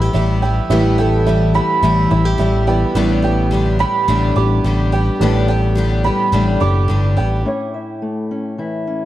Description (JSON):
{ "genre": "folk", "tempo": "107 BPM", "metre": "4/4", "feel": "straight", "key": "unclear", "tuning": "A4 = 438 Hz", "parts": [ { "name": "fingerpicked old ladder-braced acoustic guitar", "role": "accompaniment", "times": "0.0-9.1 s", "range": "A2 to E5", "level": "-21 LUFS", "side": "left 1 dB", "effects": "none" }, { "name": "picked twelve-string acoustic guitar", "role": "accompaniment", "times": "0.0-7.5 s", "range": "A2 to G4", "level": "-21 LUFS", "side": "left 4 dB", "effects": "none" }, { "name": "warm upright piano", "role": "accompaniment", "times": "0.0-7.5 s", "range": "A1 to G5", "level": "-24 LUFS", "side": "right 3 dB", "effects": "none" }, { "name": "cimbalom", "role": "arpeggios", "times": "0.0-9.1 s", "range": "E5 to E6", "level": "-21 LUFS", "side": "right 6 dB", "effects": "digital delay, plate reverb" }, { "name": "picked electric bass", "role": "bass", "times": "0.0-7.4 s", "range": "F#1 to A1", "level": "-16 LUFS", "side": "equal", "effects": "none" } ], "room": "light reverb", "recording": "dark, warm production", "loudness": "-13 LUFS", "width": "side -14 dB against mid", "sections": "0.0-7.5 A section; 7.5-9.1 B section", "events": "upright piano fill 2.1-3.0", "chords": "0.0 Em/A; 3.0 G/A; 7.5 A" }